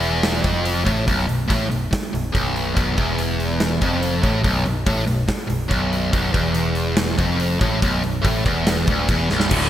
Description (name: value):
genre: hard rock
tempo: 142 BPM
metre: 4/4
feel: straight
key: unclear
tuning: A4 = 438 Hz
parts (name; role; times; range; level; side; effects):
- sludgy distorted guitar; riff; 0.0-9.7 s; B1 to D3; -20 LUFS; equal; overdrive
- modern bright picked electric bass; bass; 0.0-9.7 s; B0 to A1; -25 LUFS; equal; none
- big rock drum kit; drums; 0.0-9.6 s; crash cymbal, hi-hat, kick drum, snare drum; -23 LUFS; equal; gated reverb
- sludgy distorted guitar; riff; 9.5-9.7 s; D2 to D3; -20 LUFS; left 1 dB; overdrive
room: moderate lush hall reverb, RT60 1.8 s, small room ambience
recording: bright 1980s-style digital production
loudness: -18 LUFS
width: side -11 dB against mid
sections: 0.0-9.5 A section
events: drum fill 9.3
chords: none